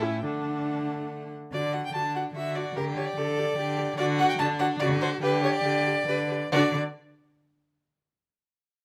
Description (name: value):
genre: quick classical-period movement for string quartet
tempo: 134-148 BPM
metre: 3/4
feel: straight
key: D major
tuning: A4 = 442 Hz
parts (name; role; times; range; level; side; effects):
- rich violin; melody; 0.0-6.8 s; Bb4 to A5; -31 LUFS; equal; none
- rich violin; second line; 0.0-6.8 s; A3 to B4; -34 LUFS; equal; none
- warm viola; accompaniment; 0.0-6.8 s; D4 to G4; -36 LUFS; equal; none
- warm cello; bass; 0.0-6.8 s; A2 to D3; -32 LUFS; equal; none
room: little or no reverb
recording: close, detailed microphones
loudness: -27 LUFS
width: mono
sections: 0.0-1.5 A section; 1.5-6.5 B section; 6.5-7.8 C section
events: none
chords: 0.2 D; 2.8 G5/D; 4.0 D; 5.2 G5/D; 6.5 N.C.